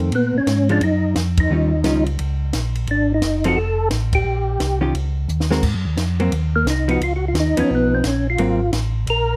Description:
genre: soul jazz organ trio.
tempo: 174 BPM.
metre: 4/4.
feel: swing 65% on 8ths.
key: Ab mixolydian.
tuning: A4 = 440 Hz.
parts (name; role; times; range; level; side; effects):
vintage hollow-body jazz guitar; accompaniment; 0.0-8.6 s; Eb3 to Bb4; -24 LUFS; equal; none.
mellow tonewheel organ; bass; 0.0-9.4 s; F1 to Bb2; -23 LUFS; equal; chorus vibrato, slow rotary speaker.
compact cocktail drum kit; drums; 0.0-9.2 s; crash cymbal, hi-hat, kick drum, ride cymbal, snare drum; -27 LUFS; equal; none.
percussive tonewheel organ; melody; 0.2-9.4 s; Bb3 to Bb4; -22 LUFS; equal; slow rotary speaker, chorus vibrato.
room: little or no reverb.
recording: close, detailed microphones.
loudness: -19 LUFS.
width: mono.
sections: 0.0-5.6 A section; 5.6-9.4 B section.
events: band accent 1.3, 4.1; drum fill 5.3-5.6; tonewheel organ solo 5.6-9.4.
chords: 0.1 Bbm7; 1.5 Eb9; 2.9 Ab7; 3.6 F; 4.3 Eb7; 5.6 Ab7; 7.0 Db9; 8.4 Ab9.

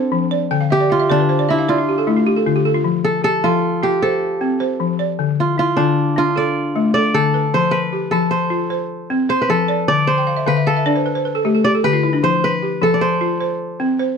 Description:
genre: west african traditional, West African string and xylophone music.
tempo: 102 BPM (dotted quarters).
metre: 12/8.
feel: straight.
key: F lydian.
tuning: A4 = 437 Hz.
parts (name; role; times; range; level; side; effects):
kora; melody; 0.0-14.2 s; C4 to D5; -18 LUFS; right 2 dB; none.
balafon; arpeggios; 0.0-14.2 s; D3 to G5; -18 LUFS; left 3 dB; none.
room: moderate studio reverb, RT60 0.6 s.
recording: dark, warm production.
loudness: -15 LUFS.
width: side -6 dB against mid.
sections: 0.0-14.2 A section.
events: kora solo 0.0-14.2; balafon fill 0.5-2.8, 10.2-12.2.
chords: 0.0 F; 0.5 D5; 2.8 F; 5.2 Dm; 7.5 F; 9.9 D5; 12.2 F.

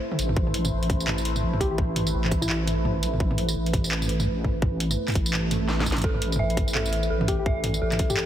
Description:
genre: half-time drum and bass.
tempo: 169 BPM.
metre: 4/4.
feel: swing 59% on 16ths, half-time.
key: A minor.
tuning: A4 = 440 Hz.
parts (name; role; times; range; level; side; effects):
deep dark ambient pad; sustained chords; 0.0-8.3 s; A3 to D5; -31 LUFS; equal; chorus, built-in reverb, vintage 12-bit sampler grit, sidechain pumping.
drum and bass drum kit; drums; 0.1-8.3 s; handclaps, hi-hat, snare drum, tambourine, toms; -28 LUFS; equal; none.
deep soft wobble bass; bass; 0.2-8.3 s; A1; -27 LUFS; equal; chorus.
electronic kick drum; drums; 0.4-8.1 s; none; -25 LUFS; equal; none.
soft struck synth lead; melody; 1.6-2.6, 7.3-8.3 s; E4 to G4; -32 LUFS; left 2 dB; chorus, tape echo.
swell; sound effects; 5.5-6.0 s; none; -34 LUFS; right 5 dB; none.
dark detuned synth bell; arpeggios; 6.0-8.3 s; A4 to E5; -30 LUFS; right 1 dB; chorus, ping-pong delay.
room: light reverb, digital ambience.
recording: heavily compressed radio sound.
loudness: -22 LUFS.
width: side -11 dB against mid.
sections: 0.0-8.3 A section.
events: swell 5.5-6.0; drum fill 5.7-6.0.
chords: 0.0 Amadd9.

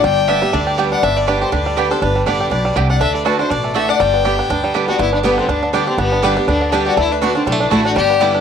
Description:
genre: bluegrass.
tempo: 242 BPM.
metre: 4/4.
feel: swing 55% on 8ths.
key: G major.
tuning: A4 = 438 Hz.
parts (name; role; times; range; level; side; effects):
bluegrass banjo; melody; 0.0-8.4 s; D3 to G4; -20 LUFS; right 4 dB; none.
clear fiddle; melody; 0.0-8.4 s; B3 to G5; -20 LUFS; left 2 dB; none.
lap resonator guitar; second line; 0.0-8.4 s; F#4 to D5; -20 LUFS; left 10 dB; none.
picked steel-string acoustic guitar; accompaniment; 0.0-8.4 s; G2 to G4; -21 LUFS; equal; none.
upright bass; bass; 0.0-8.4 s; G1 to D2; -22 LUFS; equal; none.
mandolin; stabs; 0.3-8.3 s; A3 to A5; -24 LUFS; right 9 dB; none.
room: moderate echo chamber reverb, RT60 1.7 s, studio reverb.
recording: 1960s-style stereo with parts hard left and right.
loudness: -13 LUFS.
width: side -7 dB against mid.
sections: 0.0-5.0 A section; 5.0-8.4 A section.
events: none.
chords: 0.0 G; 3.0 D; 4.0 G; 7.0 D.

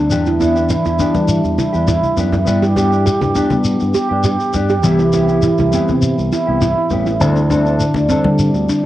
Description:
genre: highlife guitar band.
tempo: 102 BPM.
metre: 4/4.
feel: straight.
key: G major.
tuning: A4 = 441 Hz.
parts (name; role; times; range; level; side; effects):
handpan; arpeggios; 0.0-8.8 s; D3 to G4; -15 LUFS; right 1 dB; cassette tape, tape echo.
fingered electric bass; bass; 0.0-8.7 s; A1 to G3; -19 LUFS; equal; none.
mellow electric guitar; accompaniment; 0.1-8.3 s; G3 to A4; -23 LUFS; left 5 dB; cassette tape.
shekere; percussion; 0.1-8.8 s; none; -24 LUFS; left 2 dB; none.
congas; percussion; 0.4-8.4 s; none; -24 LUFS; left 2 dB; none.
room: moderate spring reverb, RT60 1.4 s, small room ambience.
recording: home recording on cassette.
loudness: -13 LUFS.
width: side -14 dB against mid.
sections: 0.0-8.9 A section.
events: drum fill 2.0-2.5.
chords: 0.1 Em7; 2.5 G; 4.8 Cmaj7; 7.2 D7sus4.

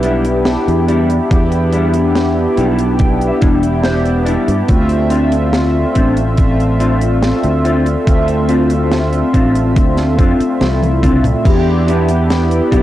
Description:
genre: vaporwave.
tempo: 71 BPM.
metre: 4/4.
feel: straight.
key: D dorian.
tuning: A4 = 440 Hz.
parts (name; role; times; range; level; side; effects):
mellow synth brass; accompaniment; 0.0-12.8 s; A3 to E5; -16 LUFS; equal; lush chorus, tape echo.
warbly tape-like pad; sustained chords; 0.0-12.8 s; G4 to C6; -24 LUFS; equal; chorus, built-in reverb.
mellow electric guitar; riff; 0.0-12.8 s; G3 to A5; -20 LUFS; left 2 dB; ensemble chorus, tape echo.
sustaining fretless electric bass; bass; 0.0-12.8 s; E1 to G2; -16 LUFS; equal; tube saturation, lush chorus.
deep reggae drum kit; drums; 0.0-12.8 s; crash cymbal, hi-hat, snare drum, toms; -21 LUFS; equal; small room ambience.
electronic kick drum; drums; 1.3-12.8 s; none; -13 LUFS; equal; overdrive, small room ambience.
room: light reverb.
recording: dry, gritty hardware recording, cassette tape.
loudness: -11 LUFS.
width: side -13 dB against mid.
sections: 0.0-11.4 A section; 11.4-12.8 B section.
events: clean electric guitar fill 2.2-4.7; drum fill 10.6-11.4.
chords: 0.0 Em7; 4.7 Dm7; 11.4 Em7.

